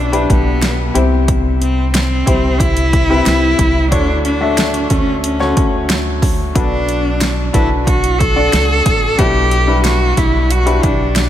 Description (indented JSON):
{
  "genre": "piano-driven pop",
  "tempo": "91 BPM",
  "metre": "4/4",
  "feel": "straight",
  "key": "D major",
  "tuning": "A4 = 437 Hz",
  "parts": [
    { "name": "warm cello", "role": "melody", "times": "0.0-11.3 s", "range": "B3 to A4", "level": "-17 LUFS", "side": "equal", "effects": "analog delay" },
    { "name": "bright upright piano", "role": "accompaniment", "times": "0.0-11.3 s", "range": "B2 to E5", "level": "-19 LUFS", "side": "left 4 dB", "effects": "none" },
    { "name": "upright bass", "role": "bass", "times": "0.0-11.3 s", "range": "A1 to D2", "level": "-17 LUFS", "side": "equal", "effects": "none" },
    { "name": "deep house drum kit", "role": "drums", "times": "0.1-11.3 s", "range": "hi-hat, kick drum, snare drum", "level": "-17 LUFS", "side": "equal", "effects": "overdrive" }
  ],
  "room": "moderate cathedral reverb, RT60 4.8 s",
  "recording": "dreamy mix soaked in reverb",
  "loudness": "-12 LUFS",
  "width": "side -11 dB against mid",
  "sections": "0.0-11.3 A section",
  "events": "none",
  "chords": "0.0 Em7/B; 1.0 C; 3.9 Dmaj7; 6.6 Bm7; 9.2 Em7/B"
}